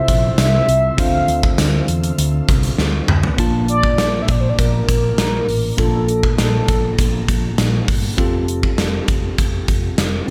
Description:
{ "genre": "1980s-style pop", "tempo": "100 BPM", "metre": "4/4", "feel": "straight", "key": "unclear", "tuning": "A4 = 439 Hz", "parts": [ { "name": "mellow horn-like synth lead", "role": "melody", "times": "0.0-7.5 s", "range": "A4 to F5", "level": "-23 LUFS", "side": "equal", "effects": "chorus, digital delay, shimmer reverb" }, { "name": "tine electric piano", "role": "accompaniment", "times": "0.0-10.3 s", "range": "Bb2 to A5", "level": "-24 LUFS", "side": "equal", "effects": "shimmer reverb" }, { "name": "mellow fretless electric bass", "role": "bass", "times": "0.1-10.3 s", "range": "F1 to E2", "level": "-23 LUFS", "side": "equal", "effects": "none" }, { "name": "gated 80s drum kit", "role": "drums", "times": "0.1-10.1 s", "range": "hi-hat, kick drum, snare drum, tambourine, toms", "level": "-20 LUFS", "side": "equal", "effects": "gated reverb" } ], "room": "light reverb, small room ambience", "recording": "none", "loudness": "-17 LUFS", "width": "mono", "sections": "0.0-3.4 A section; 3.4-10.3 B section", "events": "drum fill 2.8-3.4", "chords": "0.0 Fmaj7; 1.0 Dm7; 3.4 Bbmaj7; 8.2 Fadd9" }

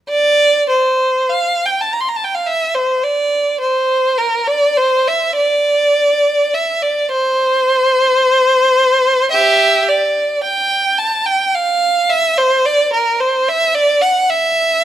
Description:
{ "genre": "classical, free, expressive piece for unaccompanied violin", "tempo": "53 BPM", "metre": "4/4", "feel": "uneven beats, rubato", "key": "unclear", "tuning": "A4 = 440 Hz", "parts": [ { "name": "rich violin", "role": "solo", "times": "0.1-14.8 s", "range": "G4 to C6", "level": "-12 LUFS", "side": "right 1 dB", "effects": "none" } ], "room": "light reverb", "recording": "close, detailed microphones", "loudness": "-12 LUFS", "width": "side -11 dB against mid", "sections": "0.1-14.8 A section", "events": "none", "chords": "none" }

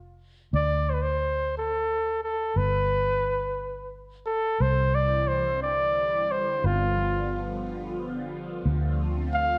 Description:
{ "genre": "acoustic folk-pop ballad", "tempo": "89 BPM", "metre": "3/4", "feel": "straight", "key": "C major", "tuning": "A4 = 443 Hz", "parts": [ { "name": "vintage muted fingered electric bass", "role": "bass", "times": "0.0-9.6 s", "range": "F1 to D2", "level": "-30 LUFS", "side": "equal", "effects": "none" }, { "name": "warm flugelhorn", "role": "melody", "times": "0.6-9.6 s", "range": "F4 to F5", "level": "-28 LUFS", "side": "equal", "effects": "none" }, { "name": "phased analog pad", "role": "sustained chords", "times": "4.8-9.6 s", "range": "D3 to F4", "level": "-37 LUFS", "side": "equal", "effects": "phaser, chorus" } ], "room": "moderate large studio reverb, RT60 1.5 s", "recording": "none", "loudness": "-26 LUFS", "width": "mono", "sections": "0.0-4.6 A section; 4.6-9.6 B section", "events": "none", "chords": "0.0 N.C.; 0.5 D5; 2.6 G; 4.6 Cadd9; 6.6 G7; 8.7 Dm7" }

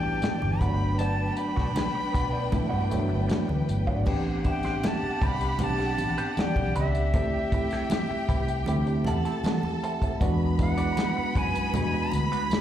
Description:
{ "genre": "lush 1970s-style soul", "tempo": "78 BPM", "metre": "4/4", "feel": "straight", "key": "A dorian", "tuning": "A4 = 440 Hz", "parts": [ { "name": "breathy bright jazz flute", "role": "melody", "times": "0.0-12.6 s", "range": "E5 to B5", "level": "-32 LUFS", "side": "equal", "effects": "slapback echo, tape echo" }, { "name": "warm studio violin section", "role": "second line", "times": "0.0-12.6 s", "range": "B3 to B5", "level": "-34 LUFS", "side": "left 1 dB", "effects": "slapback echo" }, { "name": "barky tine electric piano", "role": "accompaniment", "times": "0.0-12.6 s", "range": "F#3 to G4", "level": "-31 LUFS", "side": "equal", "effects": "medium stereo tremolo, slapback echo" }, { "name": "direct-recorded clean electric guitar", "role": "riff", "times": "0.0-12.5 s", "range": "F#3 to D5", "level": "-38 LUFS", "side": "right 4 dB", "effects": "wah, slapback echo" }, { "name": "vintage muted fingered electric bass", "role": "bass", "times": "0.0-12.3 s", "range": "G1 to G2", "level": "-28 LUFS", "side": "equal", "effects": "none" }, { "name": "vibraphone with hard mallets", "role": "texture", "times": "0.0-12.6 s", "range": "B4 to A5", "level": "-41 LUFS", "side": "equal", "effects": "none" }, { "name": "warm soul drum kit", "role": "drums", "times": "0.2-12.6 s", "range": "crash cymbal, hi-hat, kick drum, snare drum", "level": "-29 LUFS", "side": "equal", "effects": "slapback echo" }, { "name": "congas", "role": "percussion", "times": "0.2-12.6 s", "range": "none", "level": "-34 LUFS", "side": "right 3 dB", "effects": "slapback echo" } ], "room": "small room reverb", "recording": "live gig heard through the venue's PA, club reverb", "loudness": "-24 LUFS", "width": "side -11 dB against mid", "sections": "0.0-4.1 A section; 4.1-12.6 B section", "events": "none", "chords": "0.0 Em9; 0.6 Gmaj7; 4.1 Am11; 7.1 D9sus4; 10.2 E9" }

